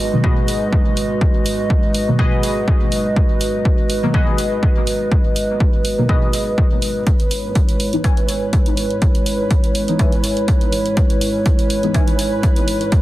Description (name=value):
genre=dub techno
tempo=123 BPM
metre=4/4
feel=swing 54% on 16ths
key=C# minor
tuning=A4 = 440 Hz
part: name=dark analog pad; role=sustained chords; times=0.0-13.0 s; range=G#3 to D#5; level=-20 LUFS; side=right 1 dB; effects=wide subtle chorus, sidechain pumping
part: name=deep mellow chord stab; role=stabs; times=0.1-12.1 s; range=B2 to D#4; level=-23 LUFS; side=equal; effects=chorus, phaser, dub echo
part: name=warbly dusty pluck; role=riff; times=0.2-12.1 s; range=F#4 to G#5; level=-28 LUFS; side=left 2 dB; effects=lush chorus, sidechain pumping, dub echo
part: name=electronic kick drum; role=drums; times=0.2-13.0 s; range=none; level=-16 LUFS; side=equal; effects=none
part: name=electronic hi-hat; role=drums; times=0.5-13.0 s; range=none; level=-26 LUFS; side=right 1 dB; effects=none
part: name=bubbling stepped-filter texture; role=texture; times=7.1-13.0 s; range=B4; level=-28 LUFS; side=right 3 dB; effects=chorus, built-in reverb, sidechain pumping
room=light reverb, digital ambience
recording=dense, heavily limited modern master, vinyl crackle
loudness=-14 LUFS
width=side -16 dB against mid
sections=0.0-13.0 A section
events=none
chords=0.0 G#m7; 7.1 C#m7